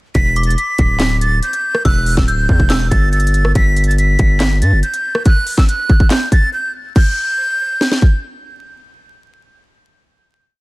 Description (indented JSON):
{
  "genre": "hip hop, trap",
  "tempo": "141 BPM",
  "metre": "4/4",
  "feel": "half-time",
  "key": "E minor",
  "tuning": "A4 = 440 Hz",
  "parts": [
    { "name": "distorted 808-style bass", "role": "bass", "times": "0.1-4.8 s", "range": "D1 to G2", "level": "-14 LUFS", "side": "equal", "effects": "distortion" },
    { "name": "trap drum kit", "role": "drums", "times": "0.1-8.1 s", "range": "crash cymbal, handclaps, hi-hat, kick drum, rim click, snare drum", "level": "-13 LUFS", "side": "equal", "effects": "none" },
    { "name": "breathy bright jazz flute", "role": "melody", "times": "0.2-8.2 s", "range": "E6 to B6", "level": "-18 LUFS", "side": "right 1 dB", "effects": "ping-pong delay" },
    { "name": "metallic FM bell", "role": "second line", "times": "0.4-3.5 s", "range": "D6 to G6", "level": "-26 LUFS", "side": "left 1 dB", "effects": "chorus, ping-pong delay" }
  ],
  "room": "little or no reverb",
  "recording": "dense, heavily limited modern master, vinyl crackle",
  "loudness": "-12 LUFS",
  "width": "side -21 dB against mid",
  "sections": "0.1-7.0 hook; 7.0-10.4 final note",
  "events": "break 6.5-7.0",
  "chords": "0.1 Em7; 3.6 Gmaj7; 7.0 N.C.",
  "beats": "| 0.15 0.57 1.00 1.43 | 1.85 2.28 2.70 3.13 | 3.55 3.98 4.41 4.83 | 5.26 5.68 6.11 6.53 | 6.96 7.38 7.81"
}